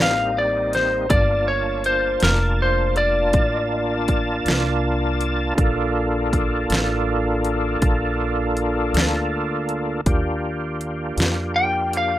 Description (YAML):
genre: slow blues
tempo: 54 BPM (dotted quarters)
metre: 12/8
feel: straight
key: G minor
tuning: A4 = 439 Hz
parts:
  - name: lightly driven lead guitar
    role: melody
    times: 0.0-12.2 s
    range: Bb4 to G5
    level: -20 LUFS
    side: left 1 dB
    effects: none
  - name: overdriven tonewheel organ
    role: sustained chords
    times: 0.0-12.2 s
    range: G3 to A5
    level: -23 LUFS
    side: equal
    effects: slow rotary speaker, chorus vibrato
  - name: upright bass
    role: bass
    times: 0.0-12.2 s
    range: F1 to F2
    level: -25 LUFS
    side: equal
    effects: none
  - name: pop drum kit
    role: drums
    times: 0.7-12.1 s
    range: hi-hat, kick drum, snare drum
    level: -21 LUFS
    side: equal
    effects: overdrive
room: light reverb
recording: rough home demo mix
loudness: -18 LUFS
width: side -13 dB against mid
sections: 0.0-12.2 A section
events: none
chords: 0.0 Cm9; 1.1 Gm9; 10.1 Ebmaj7